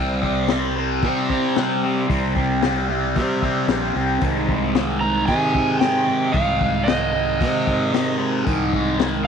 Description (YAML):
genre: psychedelic rock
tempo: 113 BPM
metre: 4/4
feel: straight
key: unclear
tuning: A4 = 440 Hz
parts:
  - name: fuzz guitar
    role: riff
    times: 0.0-9.3 s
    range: Ab2 to C4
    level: -21 LUFS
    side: equal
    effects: distortion, phaser
  - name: fuzz fingered electric bass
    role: bass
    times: 0.0-9.3 s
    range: Bb1 to C3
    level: -24 LUFS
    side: right 1 dB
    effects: overdrive
  - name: crunchy breakbeat drum kit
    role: drums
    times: 0.2-9.1 s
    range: hi-hat, kick drum, snare drum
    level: -24 LUFS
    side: left 4 dB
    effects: none
  - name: overdriven slide guitar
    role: melody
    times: 5.0-9.3 s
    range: Eb5 to Bb5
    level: -22 LUFS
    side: right 3 dB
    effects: slapback echo
room: light reverb, studio ambience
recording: 1960s-style stereo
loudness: -18 LUFS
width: side -7 dB against mid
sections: 0.0-9.3 A section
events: none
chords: 0.0 C5; 4.2 Ab/C